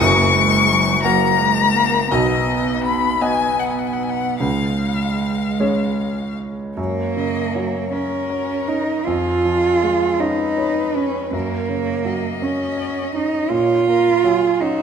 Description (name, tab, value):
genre	classical, slow romantic movement for piano trio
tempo	49-60 BPM (dotted quarters)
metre	6/8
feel	rubato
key	F# major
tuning	A4 = 442 Hz
part	rich violin	melody	0.0-14.8 s	F#4 to C#6	-21 LUFS	left 7 dB	none
part	warm cello	second line	0.0-14.8 s	F#3 to E#4	-20 LUFS	right 4 dB	none
part	clear concert grand piano	accompaniment	0.0-14.8 s	F#1 to D#5	-22 LUFS	equal	none
room	wet scoring stage reverb, RT60 1.5 s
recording	none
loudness	-16 LUFS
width	side -7 dB against mid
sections	0.0-6.8 A section; 6.8-14.8 B section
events	none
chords	0.0 F#; 2.1 B; 4.4 C#; 6.8 F#; 9.1 C#/E#; 11.3 F#; 13.5 F#/A#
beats	| 0.01 1.04 | 2.11 3.21 | 4.41 5.60 | 6.78 7.95 | 9.08 10.21 | 11.33 12.43 | 13.52 14.61